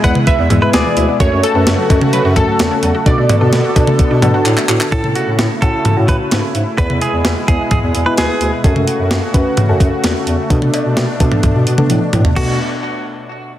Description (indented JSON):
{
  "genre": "synth-pop",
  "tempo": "129 BPM",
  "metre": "4/4",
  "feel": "straight",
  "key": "B dorian",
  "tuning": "A4 = 444 Hz",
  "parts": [
    { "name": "funky polysynth comp", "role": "melody", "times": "0.0-4.4 s", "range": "A4 to F#5", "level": "-18 LUFS", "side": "left 1 dB", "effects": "chorus, tape echo" },
    { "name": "direct-recorded clean electric guitar", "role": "second line", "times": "0.0-1.1, 4.9-8.5, 12.4-12.6 s", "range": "F#4 to B4", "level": "-21 LUFS", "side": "right 2 dB", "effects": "tape echo" },
    { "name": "soft round pluck", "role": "accompaniment", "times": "0.0-12.6 s", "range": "G#3 to B4", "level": "-19 LUFS", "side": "left 1 dB", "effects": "chorus" },
    { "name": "lush unison pad", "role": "sustained chords", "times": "0.0-12.6 s", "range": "B2 to A4", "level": "-22 LUFS", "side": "equal", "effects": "chorus" },
    { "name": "resonant blip pluck", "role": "arpeggios", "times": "0.0-4.9 s", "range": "E3 to F#4", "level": "-23 LUFS", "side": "right 1 dB", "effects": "chorus, tape echo" },
    { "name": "dark bass clarinet", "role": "bass", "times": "0.0-12.6 s", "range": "D2 to B2", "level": "-17 LUFS", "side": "equal", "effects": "none" },
    { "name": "clean 12-bit digital drum machine", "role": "drums", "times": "0.0-12.5 s", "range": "cowbell, crash cymbal, handclaps, hi-hat, kick drum, snare drum, toms", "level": "-15 LUFS", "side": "equal", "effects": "overdrive" }
  ],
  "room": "moderate lush hall reverb, RT60 1.8 s, digital ambience",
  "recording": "dense, heavily limited modern master",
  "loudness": "-11 LUFS",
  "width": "side -12 dB against mid",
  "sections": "0.0-4.9 A section; 4.9-12.4 B section; 12.4-13.6 C section",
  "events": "drum fill 4.5-4.9, 11.9-12.4",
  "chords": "0.0 E; 1.2 F#m; 3.1 Bm7; 4.9 A; 6.8 E; 8.6 F#m; 10.5 Bm7"
}